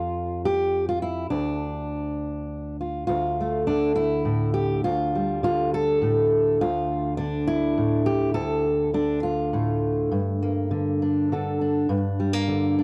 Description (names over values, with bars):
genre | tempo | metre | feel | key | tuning
folk, solo fingerstyle acoustic guitar | 68 BPM (dotted quarters) | 6/8 | straight | D minor | A4 = 440 Hz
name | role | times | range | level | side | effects
fingerpicked steel-string acoustic guitar | solo | 0.0-12.8 s | D2 to A4 | -24 LUFS | equal | slapback echo
room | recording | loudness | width
light reverb | dry, close 1970s-style studio recording | -24 LUFS | mono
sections
0.0-3.1 A section; 3.1-12.8 B section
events
none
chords
0.0 N.C.; 1.3 Dm; 3.1 Dmadd9; 10.1 Gmadd9